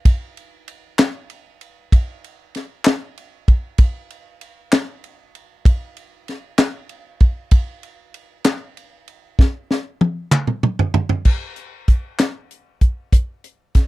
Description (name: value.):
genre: gospel.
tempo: 64 BPM (dotted quarters).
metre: 6/8.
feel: straight.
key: none.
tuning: none.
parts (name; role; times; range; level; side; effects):
tight funk drum kit; drums; 0.1-13.9 s; crash cymbal, hi-hat, kick drum, ride cymbal, snare drum, toms; -14 LUFS; equal; none.
group handclap; percussion; 1.0-12.5 s; none; -22 LUFS; left 3 dB; none.
room: little or no reverb.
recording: dry, close 1970s-style studio recording.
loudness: -17 LUFS.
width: side -19 dB against mid.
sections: 0.0-11.3 A section; 11.3-13.9 B section.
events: drum fill 9.4-11.3.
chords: none.